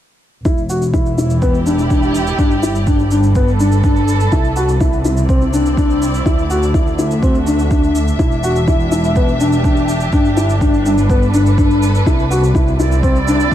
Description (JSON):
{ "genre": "piano and strings electronica", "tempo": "124 BPM", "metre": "4/4", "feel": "straight", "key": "E minor", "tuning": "A4 = 440 Hz", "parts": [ { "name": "dark chamber string section", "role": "sustained chords", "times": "0.5-13.5 s", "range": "C3 to E5", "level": "-21 LUFS", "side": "right 1 dB", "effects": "sidechain pumping" }, { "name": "felt-muted upright piano", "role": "riff", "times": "0.5-13.5 s", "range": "B3 to F#4", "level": "-16 LUFS", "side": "left 2 dB", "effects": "low-pass filter, tape echo" }, { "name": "muted studio double bass section", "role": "bass", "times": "0.5-13.5 s", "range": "E1 to D2", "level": "-17 LUFS", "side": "equal", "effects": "sidechain pumping" }, { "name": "electronic kick drum", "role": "drums", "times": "0.5-13.5 s", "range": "none", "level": "-16 LUFS", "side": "right 1 dB", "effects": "overdrive" }, { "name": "shaker", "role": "drums", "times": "0.5-13.5 s", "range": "none", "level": "-33 LUFS", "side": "right 2 dB", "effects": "overdrive" } ], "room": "small room ambience", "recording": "dark, warm production", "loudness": "-12 LUFS", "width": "side -11 dB against mid", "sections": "0.5-13.5 A section", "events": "none", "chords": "0.5 Em7; 2.4 Gadd9; 4.3 Cadd9; 6.3 Dadd9; 8.2 Em7; 10.1 Gadd9; 12.1 Cadd9" }